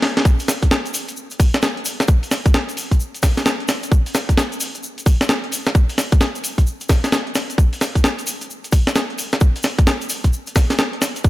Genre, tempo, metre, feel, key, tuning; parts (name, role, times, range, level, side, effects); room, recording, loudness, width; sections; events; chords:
UK garage; 131 BPM; 4/4; swing 63% on 16ths
breakbeat sampler-style drum kit; drums; 0.0-11.2 s; hi-hat, snare drum; -20 LUFS; equal
electronic kick drum; drums; 0.3-11.3 s; -14 LUFS; equal
tube shaker; percussion; 0.3-11.3 s; -29 LUFS; left 2 dB
light reverb, digital ambience; -16 LUFS; side -17 dB against mid
0.0-11.3 A section
drum fill 0.0